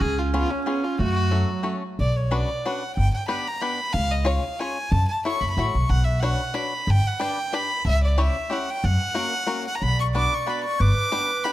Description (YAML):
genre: musette waltz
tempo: 184 BPM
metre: 3/4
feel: straight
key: B harmonic minor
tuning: A4 = 440 Hz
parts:
  - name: rich violin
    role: melody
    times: 0.0-11.5 s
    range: C#4 to D6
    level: -26 LUFS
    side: equal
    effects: none
  - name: clear clarinet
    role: second line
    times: 0.0-1.8, 9.8-11.5 s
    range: F#3 to D5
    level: -29 LUFS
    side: right 6 dB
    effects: none
  - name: upright bass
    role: bass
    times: 0.0-10.9 s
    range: F#1 to F#2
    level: -22 LUFS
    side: equal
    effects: none
  - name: bluegrass banjo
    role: accompaniment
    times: 0.3-11.5 s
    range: A3 to D5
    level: -29 LUFS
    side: left 3 dB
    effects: none
room: light reverb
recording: close, detailed microphones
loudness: -21 LUFS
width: side -14 dB against mid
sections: 0.0-2.0 A section; 2.0-11.5 B section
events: none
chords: 0.0 C#7; 1.0 F#m; 2.0 Bmadd9; 3.0 G; 3.9 C#; 4.9 F#m7; 5.9 Bmadd9; 6.9 G; 7.9 C#dim; 8.8 F#; 9.8 Bm; 10.8 G